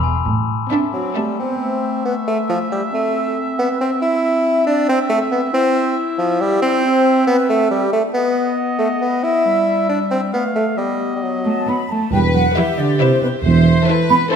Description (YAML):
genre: cinematic, playful, whimsical film cue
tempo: 137 BPM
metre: 3/4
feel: straight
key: E minor from 6.9 s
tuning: A4 = 441 Hz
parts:
  - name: glockenspiel with rubber mallets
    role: melody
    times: 0.0-1.3 s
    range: G#5 to A5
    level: -27 LUFS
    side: left 11 dB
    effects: none
  - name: warm studio violin section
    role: melody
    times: 0.0-1.5, 12.6-14.4 s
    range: C5 to E5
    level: -28 LUFS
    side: left 5 dB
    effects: none
  - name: warm studio violin section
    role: second line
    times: 0.0-1.5, 12.6-14.4 s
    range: E4 to B4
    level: -26 LUFS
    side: left 5 dB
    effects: none
  - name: rich studio viola section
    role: accompaniment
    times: 0.0-1.5, 12.1-14.4 s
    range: B3 to C5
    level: -22 LUFS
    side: left 2 dB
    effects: none
  - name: dark studio cello section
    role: bass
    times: 0.0-1.6, 11.5-14.4 s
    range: E2 to D4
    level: -19 LUFS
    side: right 4 dB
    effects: none
  - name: rich studio double bass section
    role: bass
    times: 0.0-0.6, 12.1-13.8 s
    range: E1 to E2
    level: -20 LUFS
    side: right 3 dB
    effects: none
  - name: mellow large flute ensemble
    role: second line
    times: 0.9-14.4 s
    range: F4 to C6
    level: -23 LUFS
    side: left 1 dB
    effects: none
  - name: warm bassoon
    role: accompaniment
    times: 0.9-11.9 s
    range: F3 to E4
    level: -18 LUFS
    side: right 1 dB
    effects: none
  - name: clear oboe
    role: second line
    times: 1.6-11.9 s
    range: D#5 to F5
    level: -27 LUFS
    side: equal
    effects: none
  - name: dark clarinet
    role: second line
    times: 1.6-11.9 s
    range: G3 to E4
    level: -22 LUFS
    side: left 2 dB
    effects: none
  - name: dark tuba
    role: bass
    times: 12.1-13.8 s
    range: E1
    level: -20 LUFS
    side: right 3 dB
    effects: none
room: moderate scoring stage reverb, RT60 1.5 s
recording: none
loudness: -15 LUFS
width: side -7 dB against mid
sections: 0.0-1.6 A section; 1.6-12.1 A section; 12.1-14.4 B section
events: none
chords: 0.3 Am; 1.6 C; 5.5 N.C.; 6.9 Am7; 8.1 B; 9.5 Em/G; 10.3 F/A; 10.8 B; 12.1 Em; 13.4 Am/E